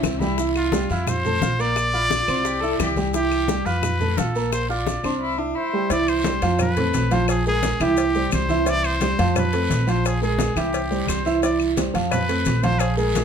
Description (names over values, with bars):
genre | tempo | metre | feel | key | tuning
latin, Cuban son and guajira | 174 BPM | 4/4 | straight | C major | A4 = 444 Hz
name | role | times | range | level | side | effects
rich cello | second line | 0.0-5.9 s | C4 to A4 | -28 LUFS | left 6 dB | none
dark grand piano | arpeggios | 0.0-13.2 s | E3 to F6 | -23 LUFS | right 2 dB | none
upright bass | bass | 0.0-13.2 s | Bb1 to F2 | -25 LUFS | equal | none
bongos and cowbell | percussion | 0.0-13.2 s | none | -30 LUFS | left 8 dB | none
claves | percussion | 0.0-13.0 s | none | -33 LUFS | left 9 dB | none
congas | percussion | 0.0-13.2 s | none | -28 LUFS | left 2 dB | none
guiro | percussion | 0.0-13.2 s | none | -36 LUFS | right 3 dB | none
maracas | percussion | 0.0-13.2 s | none | -37 LUFS | left 6 dB | none
trumpet with straight mute | melody | 0.6-13.2 s | E4 to D5 | -25 LUFS | left 1 dB | slapback echo, plate reverb
room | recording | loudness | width
light reverb | close, detailed microphones | -19 LUFS | side -7 dB against mid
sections
0.0-5.9 A section; 5.9-13.2 B section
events
none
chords
0.0 C; 1.1 F; 1.8 Bb; 2.5 C; 3.8 F; 4.5 Bb; 5.2 C; 6.6 F; 7.3 Bb5; 8.0 C; 9.4 F; 10.0 Bb5; 10.7 C; 12.1 F